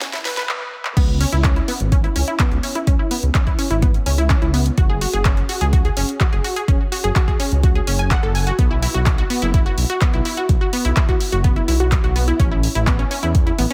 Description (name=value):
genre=progressive house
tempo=126 BPM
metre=4/4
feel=straight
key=C# minor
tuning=A4 = 440 Hz
part: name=unison pluck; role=arpeggios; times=0.0-13.7 s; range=B3 to G#5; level=-25 LUFS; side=equal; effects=sidechain pumping, delay
part: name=dark detuned saw bass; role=bass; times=0.0-13.7 s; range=F#1 to E2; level=-22 LUFS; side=equal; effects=sidechain pumping, high-pass filter
part: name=deep house drum kit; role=drums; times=0.0-13.7 s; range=crash cymbal, handclaps, hi-hat, snare drum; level=-28 LUFS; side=equal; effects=overdrive, high-pass filter on snare, sidechain pumping on hats, high-pass filter on hats, sidechain pumping on cymbals, high-pass filter on cymbals
part: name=electronic kick drum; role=drums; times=0.0-13.4 s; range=none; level=-20 LUFS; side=equal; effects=high-pass filter on kick, high-pass filter on room
room=little or no reverb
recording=high-pass filter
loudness=-18 LUFS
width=mono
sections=1.0-13.7 A section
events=drum fill 0.0-0.5, 0.5-1.0; drop 1.0-13.7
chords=0.0 Asus2; 1.0 C#m7; 4.8 F#sus2; 8.6 Bsus4; 12.4 Asus2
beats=0.01 0.49 | 0.97 1.44 1.92 2.40 | 2.87 3.35 3.83 4.30 | 4.78 5.25 5.73 6.21 | 6.68 7.16 7.63 8.11 | 8.59 9.06 9.54 10.02 | 10.49 10.97 11.44 11.92 | 12.40 12.87 13.35